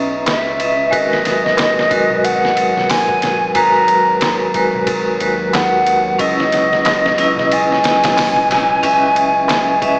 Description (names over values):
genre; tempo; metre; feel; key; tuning
trip hop; 91 BPM; 4/4; swing 59% on 16ths; G# minor; A4 = 440 Hz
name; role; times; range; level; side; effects
vibraphone with hard mallets; accompaniment; 0.0-10.0 s; G#3 to E5; -17 LUFS; equal; tremolo, vintage 12-bit sampler grit
dark analog pad; sustained chords; 0.0-10.0 s; F#3 to C#4; -29 LUFS; equal; chorus, vintage 12-bit sampler grit
round analog bass; bass; 0.0-10.0 s; G#1 to D#2; -30 LUFS; equal; none
mellow hollow silver concert flute; melody; 0.3-10.0 s; D#5 to A#5; -14 LUFS; equal; vintage 12-bit sampler grit, tape echo
trip hop sampler-style drum kit; drums; 0.3-10.0 s; hi-hat, kick drum, ride cymbal, snare drum; -20 LUFS; equal; small room ambience
darbuka; percussion; 0.3-9.6 s; none; -28 LUFS; equal; none
room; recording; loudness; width
wet plate reverb, RT60 2.5 s; dreamy mix soaked in reverb, vinyl crackle, small speaker sound; -12 LUFS; side -33 dB against mid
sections
0.0-10.0 A section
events
none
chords
0.0 C#m9; 0.9 G#m9; 6.2 C#m9